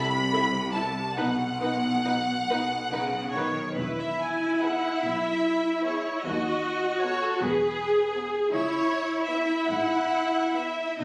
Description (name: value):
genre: classical, slow romantic movement for string orchestra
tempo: 45-54 BPM (dotted quarters)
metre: 6/8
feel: rubato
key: E major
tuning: A4 = 440 Hz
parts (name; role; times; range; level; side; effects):
- rich chamber violin section; melody; 0.0-11.0 s; A4 to B5; -32 LUFS; equal; none
- rich symphonic violin section; second line; 0.0-10.9 s; B3 to B5; -38 LUFS; equal; none
- clear symphonic cello section; bass; 0.0-11.0 s; D#2 to D#3; -35 LUFS; equal; none
- rich symphonic double bass section; bass; 0.0-11.0 s; E1 to D#2; -37 LUFS; equal; none
- rich symphonic viola section; accompaniment; 0.3-11.0 s; D#4 to B4; -29 LUFS; equal; none
room: moderate large studio reverb, RT60 0.8 s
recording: recorded on a phone in the room, studio reverb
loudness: -27 LUFS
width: mono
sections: 0.0-3.8 A section; 3.8-11.0 B section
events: none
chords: 0.0 Am/C; 1.2 B; 3.8 E; 6.3 B7/D#; 7.4 E; 8.5 C#m7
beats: | 1.16 2.48 | 3.77 5.04 | 6.25 7.41 | 8.52 9.70 | 10.99